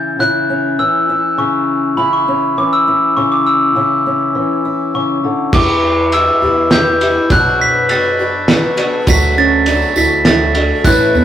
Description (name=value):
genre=indie folk with a building arrangement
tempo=101 BPM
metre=3/4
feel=straight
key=D major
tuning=A4 = 440 Hz
part: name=glockenspiel with soft plastic mallets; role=melody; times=0.0-11.2 s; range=B5 to B6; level=-14 LUFS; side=equal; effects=none
part: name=fingerpicked steel-string acoustic guitar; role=accompaniment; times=0.0-7.3 s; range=C#3 to E4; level=-18 LUFS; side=left 2 dB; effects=none
part: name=picked twelve-string acoustic guitar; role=accompaniment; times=5.5-11.2 s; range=B2 to B4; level=-16 LUFS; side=left 2 dB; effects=none
part: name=upright bass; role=bass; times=5.5-11.2 s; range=A1 to F#2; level=-21 LUFS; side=equal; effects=none
part: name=cloth-damped thuddy drum kit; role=drums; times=5.5-11.0 s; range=crash cymbal, kick drum, ride cymbal, snare drum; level=-16 LUFS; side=right 1 dB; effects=none
part: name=dark upright piano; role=arpeggios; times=9.1-11.2 s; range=B3 to F#4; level=-17 LUFS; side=right 5 dB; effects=none
part: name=tambourine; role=percussion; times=9.1-11.2 s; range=none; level=-27 LUFS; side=right 3 dB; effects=none
room=wet studio reverb, RT60 0.6 s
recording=rough rehearsal-room recording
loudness=-11 LUFS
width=side -10 dB against mid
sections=0.0-5.5 A section; 5.5-11.2 B section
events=none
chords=0.0 A/C# (rootless); 5.5 Em; 7.3 Bm; 9.1 D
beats=| 0.19 0.79 1.38 | 1.97 2.57 3.16 | 3.75 4.35 4.94 | 5.53 6.12 6.72 | 7.31 7.90 8.49 | 9.08 9.67 10.26 | 10.85